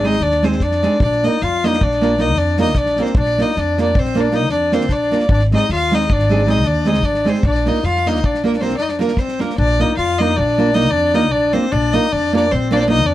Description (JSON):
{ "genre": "balkan folk, Balkan wedding band", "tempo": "308 BPM (eighths)", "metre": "11/8", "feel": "straight", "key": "Bb mixolydian", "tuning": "A4 = 440 Hz", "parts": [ { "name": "rich fiddle", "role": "melody", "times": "0.0-13.1 s", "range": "Bb4 to F5", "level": "-19 LUFS", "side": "equal", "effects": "tape echo" }, { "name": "clear clarinet", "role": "second line", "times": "0.0-13.1 s", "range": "Bb3 to F4", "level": "-22 LUFS", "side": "left 6 dB", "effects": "none" }, { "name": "nylon-string guitar", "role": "accompaniment", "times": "0.0-13.0 s", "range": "Ab3 to Bb4", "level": "-18 LUFS", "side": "right 4 dB", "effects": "none" }, { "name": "upright bass", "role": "bass", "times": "0.0-13.1 s", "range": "Ab1 to F2", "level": "-20 LUFS", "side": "equal", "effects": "none" }, { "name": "loose indie drum kit", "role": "percussion", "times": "0.0-9.5 s", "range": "kick drum, snare drum", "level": "-22 LUFS", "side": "equal", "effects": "none" } ], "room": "little or no reverb", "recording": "dry, close 1970s-style studio recording", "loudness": "-14 LUFS", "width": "side -14 dB against mid", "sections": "0.0-9.6 A section; 9.6-13.1 A section", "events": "none", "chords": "0.0 Ab; 1.0 Bb; 5.3 Ab; 7.4 Bb" }